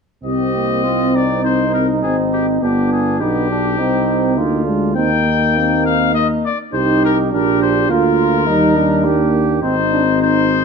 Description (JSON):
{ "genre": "classical, brass quintet", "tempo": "102 BPM", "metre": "4/4", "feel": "rubato", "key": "C minor", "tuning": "A4 = 438 Hz", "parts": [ { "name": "clear trumpet", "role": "melody", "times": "0.2-10.6 s", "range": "G4 to G5", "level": "-20 LUFS", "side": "left 7 dB", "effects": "none" }, { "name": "warm flugelhorn", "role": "second line", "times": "0.2-10.6 s", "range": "B3 to G4", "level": "-21 LUFS", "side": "right 4 dB", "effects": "none" }, { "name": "clear trombone", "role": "accompaniment", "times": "0.2-10.6 s", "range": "Bb3 to F4", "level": "-20 LUFS", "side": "right 6 dB", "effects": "none" }, { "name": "dark French horn", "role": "accompaniment", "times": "0.2-10.6 s", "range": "G3 to Eb4", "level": "-20 LUFS", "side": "left 6 dB", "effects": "none" }, { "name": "warm bass trombone", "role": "bass", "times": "0.2-10.6 s", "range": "G1 to Eb2", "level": "-20 LUFS", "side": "right 1 dB", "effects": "none" } ], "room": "moderate large studio reverb, RT60 1.4 s", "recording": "dark, warm production", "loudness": "-13 LUFS", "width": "side -5 dB against mid", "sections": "0.2-10.6 A section", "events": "none", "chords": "0.2 Cm; 2.6 G; 3.8 Cm; 5.0 Eb; 7.3 Bb; 8.5 Eb; 9.6 Ab", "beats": "| 0.24 0.84 1.44 2.03 | 2.62 3.21 3.79 4.38 | 4.97 5.56 6.15 6.74 | 7.32 7.90 8.47 9.05 | 9.63 10.21" }